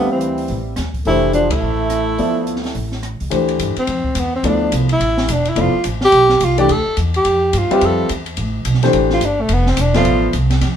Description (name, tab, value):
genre	modal jazz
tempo	214 BPM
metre	4/4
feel	swing 62% on 8ths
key	D dorian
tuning	A4 = 440 Hz
part	breathy tenor saxophone	melody	0.0-10.3 s	A3 to A4	-17 LUFS	equal	none
part	trombone with plunger mute	second line	0.0-3.0 s	E3 to A3	-23 LUFS	right 6 dB	none
part	warm concert grand piano	accompaniment	0.0-10.3 s	E3 to F5	-18 LUFS	left 3 dB	none
part	upright bass	bass	0.0-10.8 s	E1 to G2	-19 LUFS	right 1 dB	none
part	open jazz drum kit	drums	0.2-10.7 s	hi-hat, kick drum, ride cymbal, rim click, snare drum	-25 LUFS	left 1 dB	none
room	moderate studio reverb, RT60 0.7 s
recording	band playing live in one room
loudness	-14 LUFS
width	side -9 dB against mid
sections	0.0-3.3 A section; 3.3-10.8 B section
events	band accent 1.5; tenor saxophone solo 3.3-10.8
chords	0.0 Dm9